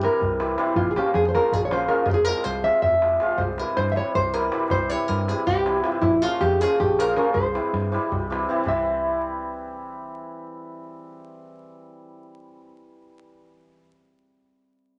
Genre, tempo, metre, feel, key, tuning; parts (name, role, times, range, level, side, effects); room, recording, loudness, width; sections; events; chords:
balkan folk, Balkan wedding band; 318 BPM (eighths); 7/8; straight; C phrygian dominant; A4 = 440 Hz
nylon-string guitar; melody; 0.0-11.7 s; E4 to E5; -25 LUFS; equal
hammered dulcimer; accompaniment; 0.0-13.8 s; C3 to F4; -28 LUFS; equal
vintage muted fingered electric bass; bass; 0.0-11.7 s; F1 to G2; -33 LUFS; equal
darbuka; percussion; 0.0-8.8 s; -33 LUFS; equal
moderate studio reverb, RT60 0.6 s; vinyl crackle, nothing above 10.6 kHz; -23 LUFS; mono
0.0-8.7 A section; 8.7-11.3 B section
0.0 C; 0.8 Bbm; 2.1 Fm; 3.4 C; 6.0 Bbm; 7.3 C